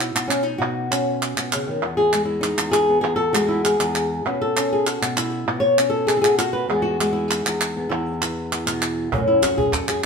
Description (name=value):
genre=flamenco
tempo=197 BPM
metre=4/4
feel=straight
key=E major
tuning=A4 = 440 Hz
part: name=flamenco guitar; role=melody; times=0.0-10.1 s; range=E2 to C#5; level=-20 LUFS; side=left 1 dB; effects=none
part: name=palmas hand claps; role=percussion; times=0.0-10.0 s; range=none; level=-25 LUFS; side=right 2 dB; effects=none
part: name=cajon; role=percussion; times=9.1-9.9 s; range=none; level=-26 LUFS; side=right 3 dB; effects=none
room=moderate stone room reverb, RT60 1.1 s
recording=band playing live in one room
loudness=-18 LUFS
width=side -5 dB against mid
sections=0.0-9.1 A section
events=none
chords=0.0 Bsus2; 1.8 E; 4.3 Bsus2; 6.7 E; 9.1 F#m